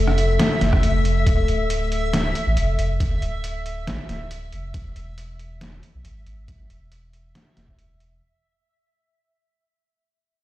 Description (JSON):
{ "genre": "deep dubstep", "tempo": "138 BPM", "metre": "4/4", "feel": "half-time", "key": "unclear", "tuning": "A4 = 440 Hz", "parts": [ { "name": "deep dark ambient pad", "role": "sustained chords", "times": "0.0-8.3 s", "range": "A3 to A4", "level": "-28 LUFS", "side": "left 5 dB", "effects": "chorus, built-in reverb" }, { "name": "soft dub sub bass", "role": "bass", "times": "0.0-8.2 s", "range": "D1 to B1", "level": "-24 LUFS", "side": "equal", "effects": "tube saturation" }, { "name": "backwards swelling texture", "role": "texture", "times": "0.0-8.2 s", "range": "E5", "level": "-29 LUFS", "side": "equal", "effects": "built-in reverb" }, { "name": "trip hop sampler-style drum kit", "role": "drums", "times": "0.1-8.1 s", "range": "hi-hat, rim click, snare drum", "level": "-25 LUFS", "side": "equal", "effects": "overdrive, small room ambience" }, { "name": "electronic kick drum", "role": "drums", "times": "0.7-7.8 s", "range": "none", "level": "-21 LUFS", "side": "equal", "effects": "overdrive, small room ambience" } ], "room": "light reverb", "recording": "played on a big sound system in a bare room, stone room reverb", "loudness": "-19 LUFS", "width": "side -15 dB against mid", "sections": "0.0-8.2 A section", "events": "fade-out 0.0-8.2", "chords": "0.0 Fmaj7; 1.3 Dm; 4.7 E", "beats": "0.39 0.83 | 1.26 1.70 2.13 2.57 | 3.00 3.44 3.87 4.31 | 4.74 5.18 5.61 6.05 | 6.48 6.92 7.35 7.79" }